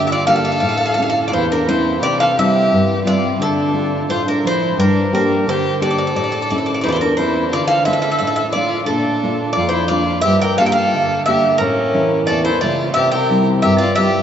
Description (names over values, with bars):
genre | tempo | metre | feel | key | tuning
greek folk, Greek bouzouki band | 88 BPM | 2/4 | straight | D minor | A4 = 436 Hz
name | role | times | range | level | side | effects
Greek bouzouki | melody | 0.0-14.2 s | A4 to G5 | -17 LUFS | equal | none
rich violin | second line | 0.0-14.2 s | C#4 to Bb4 | -21 LUFS | left 1 dB | none
nylon-string guitar | accompaniment | 0.0-14.2 s | E2 to E5 | -19 LUFS | equal | none
room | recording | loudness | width
wet cathedral reverb, RT60 5.3 s | in a vast, echoing space, nothing above 7.7 kHz | -14 LUFS | side -9 dB against mid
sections
0.0-7.5 A section; 7.5-14.2 A section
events
speeding up 0.0-14.2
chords
0.0 Gm; 0.6 A; 2.0 C; 3.4 Dm; 4.8 Gm; 6.1 A; 7.5 Dm; 8.9 Bb; 10.2 Gm; 11.6 A; 13.0 C